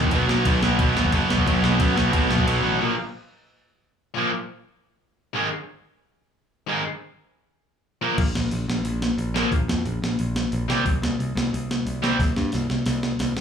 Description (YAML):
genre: punk rock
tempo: 179 BPM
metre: 4/4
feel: straight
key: unclear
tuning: A4 = 438 Hz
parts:
  - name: distorted electric guitar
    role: riff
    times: 0.0-12.2 s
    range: Eb2 to C4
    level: -25 LUFS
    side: right 11 dB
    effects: distortion, slapback echo
  - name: fuzz guitar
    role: riff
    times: 0.0-2.8 s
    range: Eb2 to B3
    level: -26 LUFS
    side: left 2 dB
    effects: distortion, slapback echo
  - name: tight distorted guitar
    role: riff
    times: 0.0-12.2 s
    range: Eb2 to C4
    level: -27 LUFS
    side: left 12 dB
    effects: distortion, slapback echo
  - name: modern bright picked electric bass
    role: bass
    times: 0.0-2.8, 8.2-13.4 s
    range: F#1 to B2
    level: -25 LUFS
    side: equal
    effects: none
  - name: breakbeat sampler-style drum kit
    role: drums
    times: 0.0-2.6, 8.2-13.4 s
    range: crash cymbal, hi-hat, kick drum, ride cymbal, snare drum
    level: -24 LUFS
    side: equal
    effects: none
room: digital ambience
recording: live gig heard through the venue's PA, club reverb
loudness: -20 LUFS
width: side -7 dB against mid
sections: 0.0-2.8 A section; 2.8-13.4 B section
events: kick and snare drop out 2.5-2.8; drum fill 12.2-13.4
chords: 0.1 B5; 2.8 Bb5; 5.3 Ab5; 8.0 Bb5; 10.7 C5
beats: | 0.12 0.46 0.79 1.13 | 1.47 1.81 2.14 2.48 | 2.82 3.15 3.49 3.83 | 4.16 4.50 4.84 5.17 | 5.51 5.84 6.18 6.51 | 6.85 7.18 7.52 7.85 | 8.19 8.52 8.86 9.19 | 9.52 9.86 10.19 10.53 | 10.86 11.20 11.53 11.86 | 12.20 12.53 12.87 13.20